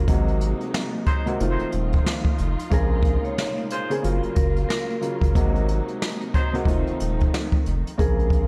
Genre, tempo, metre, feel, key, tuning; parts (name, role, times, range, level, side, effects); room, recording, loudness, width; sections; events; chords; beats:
hip hop, boom-bap hip-hop; 91 BPM; 4/4; swing 60% on 16ths; A4 = 440 Hz
warm grand piano; accompaniment; 0.0-8.5 s; C3 to Ab4; -30 LUFS; equal; high-pass filter, low-pass filter
warm studio string section; sustained chords; 0.0-8.5 s; Bb2 to F4; -35 LUFS; equal; high-pass filter, low-pass filter
saturated sub bass; bass; 0.0-8.4 s; Eb1 to Bb1; -26 LUFS; equal
jazz brush drum kit; drums; 0.1-8.5 s; hi-hat, kick drum, snare drum; -25 LUFS; equal; vintage 12-bit sampler grit
warm horn section; stabs; 1.1-6.6 s; Gb3 to C5; -35 LUFS; equal; high-pass filter, low-pass filter, analog delay
vibraphone with medium hard mallets; melody; 2.7-8.5 s; Bb4 to Db5; -34 LUFS; equal; high-pass filter, low-pass filter, analog delay
light reverb, studio reverb; -23 LUFS; mono
0.0-8.5 A section
0.1 Ab9; 1.4 F7; 2.7 Bbm9; 4.0 Gbmaj7; 5.4 Ab9; 6.7 F7
| 0.08 0.74 1.40 2.06 | 2.72 3.38 4.04 4.70 | 5.35 6.01 6.67 7.33 | 7.99